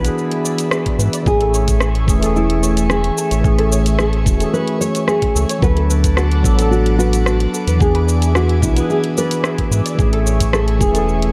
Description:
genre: sunset chillout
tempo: 110 BPM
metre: 4/4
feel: straight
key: A major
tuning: A4 = 437 Hz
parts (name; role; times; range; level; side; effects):
- nylon-string guitar; melody; 0.0-11.3 s; E4 to C#5; -24 LUFS; equal; digital delay
- mellow tine electric piano; accompaniment; 0.0-11.3 s; E3 to A4; -23 LUFS; equal; digital delay
- airy breathy pad; sustained chords; 0.0-11.3 s; A3 to D6; -30 LUFS; equal; chorus, phaser
- soft round pluck; arpeggios; 0.0-11.1 s; F#4 to D5; -29 LUFS; equal; ensemble chorus, cassette tape, digital delay
- round analog bass; bass; 0.0-11.3 s; E1 to G#2; -19 LUFS; equal; none
- smooth R&B drum kit; drums; 0.0-11.3 s; cabasa, hi-hat, rim click; -26 LUFS; equal; studio ambience
- electronic kick drum; drums; 0.9-10.9 s; none; -20 LUFS; equal; studio ambience
room: light reverb, digital ambience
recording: dark, warm production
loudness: -16 LUFS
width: mono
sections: 0.0-11.3 A section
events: none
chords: 0.0 E7; 1.3 Amaj7; 5.6 D6; 7.8 E7; 10.0 Amaj7

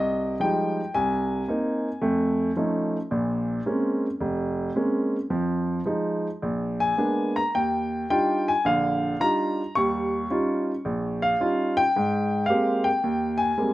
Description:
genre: solo jazz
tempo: 110 BPM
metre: 4/4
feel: swing 69% on 8ths, rubato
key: unclear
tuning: A4 = 440 Hz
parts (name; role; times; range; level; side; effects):
- warm grand piano; solo; 0.0-13.7 s; F1 to Db6; -22 LUFS; equal; slapback echo
room: little or no reverb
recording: recorded outdoors, with no room sound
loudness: -22 LUFS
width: side -16 dB against mid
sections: 0.0-13.7 A section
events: none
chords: 0.0 Fm9; 0.9 Abadd9/C; 2.0 F7alt; 3.1 Bbm9; 5.3 Fm7; 6.4 Bb7b9; 7.5 Ebmaj9; 9.8 Eb9; 12.0 Abmaj9

